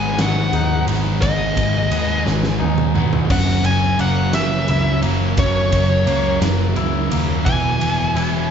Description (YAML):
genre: post-rock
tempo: 58 BPM (dotted quarters)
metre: 6/8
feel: straight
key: unclear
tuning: A4 = 440 Hz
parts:
  - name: smooth overdriven lead guitar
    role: melody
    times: 0.0-8.5 s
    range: C#5 to G#5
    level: -22 LUFS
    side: left 1 dB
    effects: none
  - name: warm studio string section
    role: sustained chords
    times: 0.0-8.5 s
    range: B3 to G#5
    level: -33 LUFS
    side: equal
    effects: none
  - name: twangy electric guitar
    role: arpeggios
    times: 0.0-8.5 s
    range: F#2 to G#4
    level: -28 LUFS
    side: left 2 dB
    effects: none
  - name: crunchy overdriven guitar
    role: riff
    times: 0.0-8.5 s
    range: E2 to B3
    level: -23 LUFS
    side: right 8 dB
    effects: none
  - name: sludgy distorted guitar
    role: riff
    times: 0.0-8.5 s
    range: E2 to B3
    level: -23 LUFS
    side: left 6 dB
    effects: overdrive
  - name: vintage muted picked electric bass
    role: bass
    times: 0.0-8.5 s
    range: E1 to D#2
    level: -21 LUFS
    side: equal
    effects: none
  - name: huge arena drum kit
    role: drums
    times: 0.2-8.3 s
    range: crash cymbal, kick drum, ride cymbal, snare drum, toms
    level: -23 LUFS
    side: equal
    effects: none
room: moderate large studio reverb, RT60 1.4 s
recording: band playing live in one room, nothing above 7.7 kHz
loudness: -15 LUFS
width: side -7 dB against mid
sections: 0.0-8.5 A section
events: drum fill 2.3-3.3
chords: 0.0 G#m7; 3.3 F#7; 7.5 Eadd9